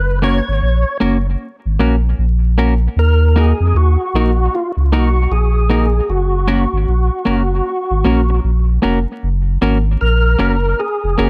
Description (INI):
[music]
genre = roots reggae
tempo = 77 BPM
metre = 4/4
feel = swing 64% on 16ths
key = F# major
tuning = A4 = 440 Hz
[part]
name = percussive tonewheel organ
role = melody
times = 0.0-11.3 s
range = E#4 to C#5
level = -22 LUFS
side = equal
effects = overdrive, chorus vibrato, slow rotary speaker, tape echo
[part]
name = warm sub bass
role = bass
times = 0.0-11.3 s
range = E#1 to E#2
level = -16 LUFS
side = equal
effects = none
[part]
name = semi-hollow electric guitar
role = accompaniment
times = 0.2-11.3 s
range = A#3 to A#4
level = -20 LUFS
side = equal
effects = tape echo
[sound]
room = moderate club reverb, RT60 0.8 s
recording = vinyl crackle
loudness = -15 LUFS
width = mono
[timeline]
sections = 0.0-9.2 A section; 9.2-11.3 B section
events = none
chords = 0.0 F#; 3.0 D#m; 6.1 F#